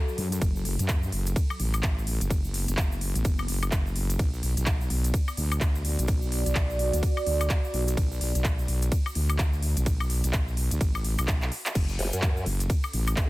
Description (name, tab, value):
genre	bass house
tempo	127 BPM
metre	4/4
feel	swing 60% on 16ths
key	unclear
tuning	A4 = 440 Hz
part	sweeping resonant pad	sustained chords	0.0-13.3 s	F#3 to D5	-36 LUFS	right 1 dB	chorus, phaser, sidechain pumping
part	egg shaker	percussion	0.1-13.3 s	none	-41 LUFS	right 2 dB	none
part	wobble bass	bass	0.2-13.2 s	F#1 to F#2	-27 LUFS	equal	chorus, tube saturation, sidechain pumping
part	big-room dance drum kit	drums	0.2-13.3 s	crash cymbal, handclaps, hi-hat, ride cymbal, woodblock	-33 LUFS	left 1 dB	overdrive
part	electronic kick drum	drums	0.4-13.3 s	none	-26 LUFS	equal	none
part	formant-sweep wobble bass	bass	12.0-13.3 s	F#1 to F#2	-29 LUFS	equal	chorus, overdrive, sidechain pumping
room	digital ambience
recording	dense, heavily limited modern master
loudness	-24 LUFS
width	side -19 dB against mid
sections	0.0-13.3 A section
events	drum fill 11.4-11.8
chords	0.0 F#m; 4.2 Bm; 11.8 F#m